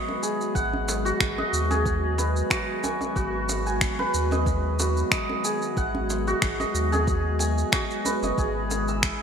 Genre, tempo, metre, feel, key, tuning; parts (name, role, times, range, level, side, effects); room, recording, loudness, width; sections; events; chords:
organic downtempo; 92 BPM; 4/4; swing 54% on 16ths; A4 = 441 Hz
warbly tape-like pad; sustained chords; 0.0-9.2 s; C#3 to G#4; -31 LUFS; left 2 dB; chorus, built-in reverb, sidechain pumping
santur; arpeggios; 0.0-9.2 s; F#4 to E6; -27 LUFS; right 2 dB; ping-pong delay
djembe; percussion; 0.1-8.8 s; -36 LUFS; right 2 dB
electronic shaker and finger snaps; drums; 0.2-9.2 s; -28 LUFS; equal; small room reverb, gated reverb
warm sub bass; bass; 0.6-9.1 s; F#1 to D#2; -28 LUFS; equal
electronic kick drum; drums; 0.6-9.2 s; -29 LUFS; equal; overdrive, small room reverb
moderate plate reverb, RT60 3.2 s; bright 1980s-style digital production; -22 LUFS; side -7 dB against mid
0.0-9.2 A section
0.0 G#m7; 3.2 B6/G#; 8.4 C#m/G#